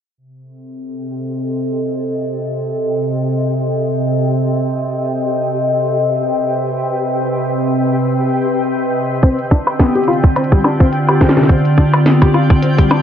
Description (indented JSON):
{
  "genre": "IDM",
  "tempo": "106 BPM",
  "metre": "4/4",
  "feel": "swing 56% on 16ths",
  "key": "C melodic minor",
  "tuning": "A4 = 440 Hz",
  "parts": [
    { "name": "icy glass pad", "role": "sustained chords", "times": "0.7-13.0 s", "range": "C3 to Eb5", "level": "-16 LUFS", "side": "equal", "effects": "chorus, built-in reverb, vintage 12-bit sampler grit" },
    { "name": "twinkling granular texture", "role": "texture", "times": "1.1-13.0 s", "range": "G4 to G5", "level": "-25 LUFS", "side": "equal", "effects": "built-in reverb" },
    { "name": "felt-muted upright piano", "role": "arpeggios", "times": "9.2-13.0 s", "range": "C3 to G4", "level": "-17 LUFS", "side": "left 3 dB", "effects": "tape echo" },
    { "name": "electronic kick drum", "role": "drums", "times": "9.2-12.9 s", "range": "none", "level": "-11 LUFS", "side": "right 1 dB", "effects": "none" },
    { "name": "glitchy drum kit", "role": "drums", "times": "9.2-13.0 s", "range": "hi-hat, percussion blips, snare drum", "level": "-18 LUFS", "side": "left 1 dB", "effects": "none" }
  ],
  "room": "light reverb, digital ambience",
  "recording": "low-pass filter",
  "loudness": "-13 LUFS",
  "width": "side -9 dB against mid",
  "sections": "0.2-13.0 A section",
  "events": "filter sweep 0.2-13.0",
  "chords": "0.2 Cm6; 9.2 Dm7",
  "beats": "| 0.17 0.74 1.30 1.87 | 2.44 3.00 3.57 4.13 | 4.70 5.27 5.83 6.40 | 6.96 7.53 8.10 8.66 | 9.23 9.80 10.36 10.93 | 11.49 12.06 12.63"
}